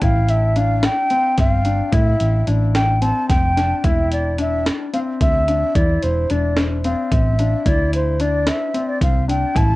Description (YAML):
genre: progressive instrumental, band music in an uneven meter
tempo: 220 BPM (eighths)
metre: 7/8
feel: straight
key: A minor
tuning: A4 = 436 Hz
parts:
  - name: breathy mellow concert flute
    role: melody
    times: 0.0-9.8 s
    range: C5 to A5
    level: -21 LUFS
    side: equal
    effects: digital delay
  - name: warm concert grand piano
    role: arpeggios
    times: 0.0-9.8 s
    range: C4 to E4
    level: -24 LUFS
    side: left 3 dB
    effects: digital delay
  - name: hollow-body short-scale picked electric bass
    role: bass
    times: 0.0-9.8 s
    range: E1 to A2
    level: -19 LUFS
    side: equal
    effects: none
  - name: breakbeat sampler-style drum kit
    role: drums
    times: 0.0-9.7 s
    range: hi-hat, kick drum, snare drum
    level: -20 LUFS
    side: equal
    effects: none
room: light reverb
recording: worn, warbling old tape, cassette tape, warbly pitch drift, nothing above 10.7 kHz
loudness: -15 LUFS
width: side -19 dB against mid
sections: 0.0-9.8 A section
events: none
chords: 0.0 Am7; 3.8 D7sus2/E; 7.7 Cadd9